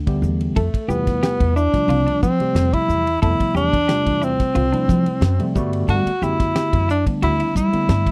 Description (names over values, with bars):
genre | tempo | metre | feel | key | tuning
electric jazz fusion | 90 BPM | 4/4 | straight | unclear | A4 = 441 Hz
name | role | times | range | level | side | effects
clean electric guitar | stabs | 0.0-8.1 s | C4 to A4 | -33 LUFS | equal | subtle chorus
upright bass | bass | 0.0-8.0 s | C2 to G3 | -23 LUFS | equal | none
tine electric piano | accompaniment | 0.1-8.1 s | C3 to G4 | -26 LUFS | equal | none
damped 70s drum kit | drums | 0.1-8.1 s | hi-hat, kick drum, ride cymbal, snare drum | -24 LUFS | equal | none
breathy tenor saxophone | melody | 0.6-8.1 s | A3 to F#4 | -23 LUFS | equal | slapback echo
room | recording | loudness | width
light reverb | dry, close 1970s-style studio recording | -19 LUFS | mono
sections
0.0-8.1 A section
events
none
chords
0.0 Gadd9; 0.6 Fmaj9; 5.6 Gmaj9